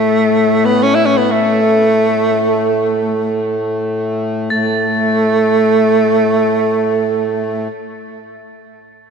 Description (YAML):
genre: world meditative, free-time meditation music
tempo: free time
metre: none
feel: none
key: unclear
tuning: A4 = 440 Hz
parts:
  - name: clear tenor saxophone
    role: melody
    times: 0.0-7.7 s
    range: A3 to E4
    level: -14 LUFS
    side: right 2 dB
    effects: ping-pong delay
  - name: hand-pumped harmonium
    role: drone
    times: 0.0-7.7 s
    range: A2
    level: -18 LUFS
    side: left 3 dB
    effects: none
  - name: crotales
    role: texture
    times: 0.0-7.7 s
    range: A6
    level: -24 LUFS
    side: left 1 dB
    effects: none
room: wet church reverb, RT60 3.2 s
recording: dark, warm production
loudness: -12 LUFS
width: side -6 dB against mid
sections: 0.0-4.5 A section; 4.5-9.1 B section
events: none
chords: none